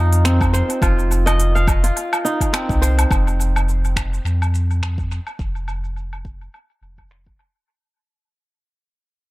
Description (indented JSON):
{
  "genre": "organic downtempo",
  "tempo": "105 BPM",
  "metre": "4/4",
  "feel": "swing 56% on 16ths",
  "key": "unclear",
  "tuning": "A4 = 439 Hz",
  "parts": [
    { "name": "kora", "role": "arpeggios", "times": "0.0-4.3 s", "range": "C4 to F5", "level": "-22 LUFS", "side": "right 1 dB", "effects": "dub echo" },
    { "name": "warm sub bass", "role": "bass", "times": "0.0-7.3 s", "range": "F1 to F2", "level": "-18 LUFS", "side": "equal", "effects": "tube saturation, sidechain pumping" },
    { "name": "organic electronic drum kit", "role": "drums", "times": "0.1-7.7 s", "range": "finger snaps, hi-hat, shaker, woodblock", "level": "-25 LUFS", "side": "equal", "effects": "low-pass filter on perc, low-pass filter on hats, low-pass filter on snare, low-pass filter on room, tape echo" },
    { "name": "electronic kick drum", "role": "drums", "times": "0.4-7.4 s", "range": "none", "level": "-21 LUFS", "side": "equal", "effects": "none" }
  ],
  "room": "digital ambience",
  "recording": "echo-heavy mix",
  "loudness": "-16 LUFS",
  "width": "side -19 dB against mid",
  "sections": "0.0-3.1 A section; 3.1-7.7 B section",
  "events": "fade-out 3.1-7.7; filter sweep on drum 3.1-7.7",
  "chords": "0.0 F5; 3.1 N.C."
}